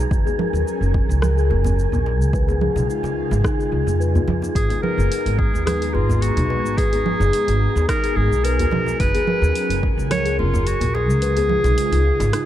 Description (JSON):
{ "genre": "organic downtempo", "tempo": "108 BPM", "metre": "4/4", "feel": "straight", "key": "G# dorian", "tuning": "A4 = 438 Hz", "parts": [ { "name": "airy breathy pad", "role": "sustained chords", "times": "0.0-12.5 s", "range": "C#3 to A#5", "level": "-28 LUFS", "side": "equal", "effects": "chorus, sidechain pumping" }, { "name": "steel tongue drum", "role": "arpeggios", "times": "0.0-12.5 s", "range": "D#4 to B4", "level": "-25 LUFS", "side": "left 4 dB", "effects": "ping-pong delay" }, { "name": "deep house drum kit", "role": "drums", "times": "0.0-12.5 s", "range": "congas, hi-hat, rim click, shaker", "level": "-28 LUFS", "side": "right 4 dB", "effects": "studio reverb" }, { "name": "wind-like tuned noise texture", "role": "texture", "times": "0.0-12.5 s", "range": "G#4", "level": "-34 LUFS", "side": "right 7 dB", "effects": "built-in reverb" }, { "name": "upright bass", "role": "bass", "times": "0.1-12.3 s", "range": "F#1 to E#2", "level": "-20 LUFS", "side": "equal", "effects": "none" }, { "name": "electronic kick drum", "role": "drums", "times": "0.1-10.0 s", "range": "none", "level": "-22 LUFS", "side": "equal", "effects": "studio reverb" }, { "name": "djembe", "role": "percussion", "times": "0.3-12.3 s", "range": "none", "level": "-28 LUFS", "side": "left 1 dB", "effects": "none" }, { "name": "bright clarinet", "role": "melody", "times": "4.6-12.5 s", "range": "E#4 to C#5", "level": "-23 LUFS", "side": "right 1 dB", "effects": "ping-pong delay" } ], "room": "light reverb", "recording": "dark, warm production", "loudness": "-17 LUFS", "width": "side -12 dB against mid", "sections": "0.0-12.5 A section", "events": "kick drops out 11.2-12.5", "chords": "0.1 F#add9; 2.3 C#7; 4.6 G#m7; 9.0 F#add9; 11.2 C#7", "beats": "| 0.11 0.67 1.22 1.78 | 2.33 2.89 3.44 4.00 | 4.56 5.11 5.67 6.22 | 6.78 7.33 7.89 8.45 | 9.00 9.56 10.11 10.67 | 11.22 11.78 12.33" }